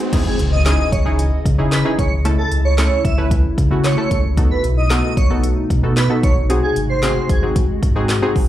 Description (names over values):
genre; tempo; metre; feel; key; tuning
dance-pop; 113 BPM; 4/4; straight; C# minor; A4 = 440 Hz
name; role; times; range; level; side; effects
glassy FM pad; sustained chords; 0.0-8.5 s; B2 to D#5; -25 LUFS; equal; ensemble chorus, built-in reverb, sidechain pumping
deep house drum kit; drums; 0.0-8.5 s; crash cymbal, handclaps, hi-hat, kick drum, snare drum; -19 LUFS; equal; none
riser and impact; sound effects; 0.0-2.3 s; none; -25 LUFS; equal; none
glassy wavetable pluck; accompaniment; 0.1-8.5 s; A3 to B4; -22 LUFS; equal; chorus, sidechain pumping, plate reverb, slapback echo
airy dreamy lead; melody; 0.3-7.4 s; G#4 to E5; -22 LUFS; right 2 dB; chorus, phaser, plate reverb, slapback echo, digital delay
sub bass with octave; bass; 0.4-8.5 s; G#1 to C#3; -18 LUFS; equal; sidechain pumping
room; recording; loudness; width
light reverb; live gig heard through the venue's PA, club reverb; -14 LUFS; side -13 dB against mid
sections
0.1-8.5 A section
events
drop 0.1-8.5; impact 0.1-2.3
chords
0.1 C#madd9; 2.3 A/C#; 4.4 B7; 6.5 G#7